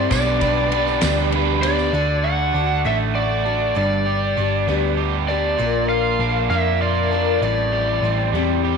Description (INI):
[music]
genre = folk rock and heartland rock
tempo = 66 BPM (dotted quarters)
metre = 6/8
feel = straight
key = G major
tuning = A4 = 440 Hz
[part]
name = lead guitar through a small cranked amp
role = melody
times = 0.0-8.6 s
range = D5 to F#5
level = -22 LUFS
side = left 2 dB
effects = overdrive, tape echo
[part]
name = picked twelve-string acoustic guitar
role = accompaniment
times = 0.0-8.8 s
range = A2 to C5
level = -25 LUFS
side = left 12 dB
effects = wide subtle chorus
[part]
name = tonewheel organ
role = sustained chords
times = 0.0-1.9 s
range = B3 to B4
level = -31 LUFS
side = equal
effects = slow rotary speaker, overdrive, chorus vibrato
[part]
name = crunchy overdriven guitar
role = riff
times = 0.0-8.8 s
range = G2 to C5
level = -23 LUFS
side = right 13 dB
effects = none
[part]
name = hollow-body short-scale picked electric bass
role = bass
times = 0.0-8.8 s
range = G1 to F2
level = -23 LUFS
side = equal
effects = none
[part]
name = damped 70s drum kit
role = drums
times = 0.1-1.8 s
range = kick drum, ride cymbal, snare drum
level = -28 LUFS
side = left 2 dB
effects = none
[part]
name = tambourine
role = percussion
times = 0.1-1.9 s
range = none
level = -34 LUFS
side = right 13 dB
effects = none
[sound]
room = moderate echo chamber reverb, RT60 1.7 s, small room ambience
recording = 1960s-style stereo with parts hard left and right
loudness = -17 LUFS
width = side -5 dB against mid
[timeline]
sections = 0.0-1.9 A section; 1.9-8.8 B section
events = none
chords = 0.1 G/B; 1.9 D; 3.8 G; 5.6 Bb; 7.4 Am7